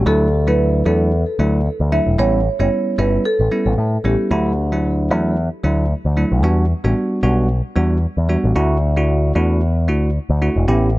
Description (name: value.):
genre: afrobeats.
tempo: 113 BPM.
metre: 4/4.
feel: swing 55% on 16ths.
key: D major.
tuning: A4 = 439 Hz.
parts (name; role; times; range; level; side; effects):
bell-like tine electric piano; accompaniment; 0.0-10.9 s; F#3 to G4; -20 LUFS; right 1 dB; none.
picked electric bass with an envelope filter; bass; 0.0-11.0 s; E1 to A2; -17 LUFS; equal; none.
marimba with medium mallets; melody; 0.1-4.2 s; G4 to E5; -21 LUFS; right 1 dB; ping-pong delay.
room: little or no reverb.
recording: none.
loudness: -15 LUFS.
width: side -18 dB against mid.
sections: 0.0-11.0 A section.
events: none.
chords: 0.1 Dadd9; 2.2 A7; 4.3 Dadd9; 6.4 Em7; 8.6 Dadd9.